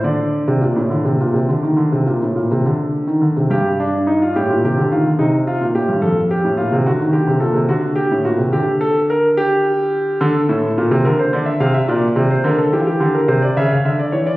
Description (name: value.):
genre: classical, baroque-style two-part invention for grand piano.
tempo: 71 BPM (dotted quarters).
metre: 12/8.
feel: straight.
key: G minor.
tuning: A4 = 441 Hz.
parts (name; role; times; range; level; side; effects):
warm grand piano; solo; 0.0-14.4 s; F2 to F5; -14 LUFS; equal; none.
room: wet recital hall reverb, RT60 1.4 s.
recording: recorded on a phone in the room, club reverb, compression.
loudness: -14 LUFS.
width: side -18 dB against mid.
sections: 0.0-3.5 A section; 3.5-14.4 B section.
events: none.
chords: 0.0 D5; 3.5 G5; 5.2 C5; 6.9 D7; 8.5 G5/D; 10.2 D5; 11.9 Gm/Bb; 13.6 C#m.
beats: | 0.04 0.92 1.78 2.65 | 3.51 4.36 5.20 6.04 | 6.87 7.71 8.54 9.38 | 10.21 11.05 11.88 12.72 | 13.57.